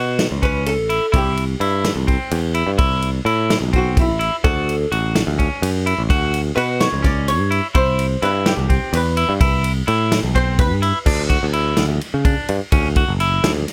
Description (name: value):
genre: progressive instrumental, band music in an uneven meter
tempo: 254 BPM (eighths)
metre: 7/8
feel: straight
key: unclear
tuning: A4 = 442 Hz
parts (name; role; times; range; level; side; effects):
- clean electric guitar; arpeggios; 0.0-13.5 s; C4 to F#4; -24 LUFS; equal; none
- picked electric bass; bass; 0.0-13.6 s; F#1 to C#3; -22 LUFS; equal; none
- natural country drum kit; drums; 0.2-13.7 s; crash cymbal, kick drum, ride cymbal, snare drum; -23 LUFS; equal; none
- archtop guitar, miked and amplified; accompaniment; 0.4-11.0 s; E4 to D5; -25 LUFS; equal; double-tracked
room: little or no reverb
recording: none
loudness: -18 LUFS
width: mono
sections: 0.0-11.1 A section; 11.1-13.7 B section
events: hollow-body jazz guitar solo 0.0-11.1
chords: 0.0 Dmaj7 (rootless); 1.1 Cmaj7; 4.4 Dmaj7; 7.8 Cmaj7; 11.1 E7(no3)/D; 12.7 Dmaj9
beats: 0.19 0.43 0.67 0.90 | 1.14 1.38 1.61 1.85 2.08 2.32 2.56 | 2.79 3.03 3.27 3.50 3.74 3.97 4.21 | 4.44 4.68 4.92 5.15 5.39 5.62 5.86 | 6.10 6.33 6.57 6.80 7.04 7.28 7.51 | 7.75 7.99 8.22 8.46 8.70 8.93 9.17 | 9.40 9.64 9.88 10.12 10.35 10.59 10.83 | 11.06 11.30 11.54 11.78 12.01 12.25 12.49 | 12.72 12.96 13.20 13.44 13.68